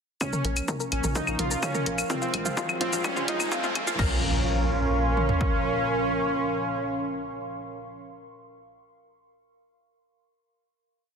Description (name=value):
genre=melodic techno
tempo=127 BPM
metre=4/4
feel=straight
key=Bb minor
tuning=A4 = 440 Hz
part: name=soft supersaw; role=melody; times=0.2-8.0 s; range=C4 to F4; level=-30 LUFS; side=right 1 dB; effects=sidechain pumping, digital delay
part: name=warm analog pad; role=sustained chords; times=0.2-8.0 s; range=Bb2 to F5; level=-35 LUFS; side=left 1 dB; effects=chorus, sidechain pumping
part: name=punchy analog drum machine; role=drums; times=0.2-5.5 s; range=kick drum, toms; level=-29 LUFS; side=equal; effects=high-pass filter on kick, high-pass filter on toms
part: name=punchy analog drum machine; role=drums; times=0.2-4.1 s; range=claves, crash cymbal, hi-hat, shaker, toms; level=-30 LUFS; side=left 2 dB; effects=sidechain pumping on toms, sidechain pumping on perc, sidechain pumping on hats, sidechain pumping on cymbals
part: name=riser and impact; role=sound effects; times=1.8-8.0 s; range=none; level=-35 LUFS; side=equal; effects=none
part: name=warbly tape-like pad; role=texture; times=0.9-8.2 s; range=F4 to Db6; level=-32 LUFS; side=right 1 dB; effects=chorus, built-in reverb, sidechain pumping
part: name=analog pluck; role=arpeggios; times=0.3-4.2 s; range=F4 to Bb4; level=-33 LUFS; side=equal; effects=chorus, vintage 12-bit sampler grit, sidechain pumping, ping-pong delay
part: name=tight sequencer bass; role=bass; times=0.4-5.4 s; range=Bb1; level=-30 LUFS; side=equal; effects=sidechain pumping
room=moderate digital room reverb, RT60 1.1 s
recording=dense, heavily limited modern master, high-pass filter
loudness=-24 LUFS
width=side -6 dB against mid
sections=0.2-4.0 build; 4.0-7.8 final chord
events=build-up 0.2-4.0; drum fill 0.2-4.0; filter sweep on synth arpeggio sound 0.2-4.0; riser 1.8-4.0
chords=0.2 Bbm; 2.1 Fm/Bb; 4.0 Bbm